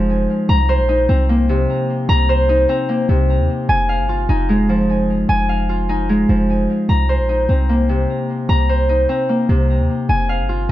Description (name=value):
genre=hip hop, trap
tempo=150 BPM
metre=4/4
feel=half-time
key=C minor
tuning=A4 = 441 Hz
part: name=Celtic harp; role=arpeggios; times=0.0-10.7 s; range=C3 to Bb5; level=-16 LUFS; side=left 1 dB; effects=low-pass filter, ping-pong delay
part: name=clean 808-style bass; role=bass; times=0.0-10.7 s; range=F1 to Eb2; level=-17 LUFS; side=equal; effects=none
room=light reverb, small room ambience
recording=none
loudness=-14 LUFS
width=side -14 dB against mid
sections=0.0-6.9 A section; 6.9-10.7 B section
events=none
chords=0.5 Cm7; 3.7 Fm7; 6.9 Cm7; 10.1 Fm7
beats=0.09 | 0.49 0.89 1.29 1.69 | 2.09 2.49 2.89 3.29 | 3.69 4.09 4.49 4.89 | 5.29 5.69 6.09 6.49 | 6.89 7.29 7.69 8.09 | 8.49 8.89 9.29 9.69 | 10.09 10.49